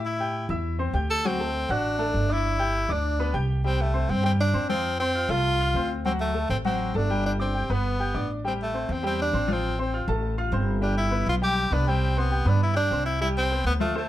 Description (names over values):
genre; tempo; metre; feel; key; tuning
latin, salsa; 201 BPM; 4/4; straight; C major; A4 = 442 Hz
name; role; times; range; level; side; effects
clear baby grand piano; accompaniment; 0.0-14.1 s; F3 to G6; -29 LUFS; left 2 dB; none
upright bass; bass; 0.0-14.1 s; G1 to A2; -26 LUFS; equal; none
bright tenor saxophone; melody; 0.1-14.1 s; A3 to A4; -27 LUFS; equal; none
room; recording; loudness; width
moderate studio reverb, RT60 0.6 s; none; -23 LUFS; side -13 dB against mid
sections
0.0-3.6 A section; 3.6-13.2 B section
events
none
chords
0.1 Am7; 1.3 D7; 2.5 G; 3.6 C5; 4.8 F; 6.0 D7; 7.2 Gsus4; 7.8 G; 8.4 Am7; 9.6 Fadd9/A; 10.8 G; 12.0 C5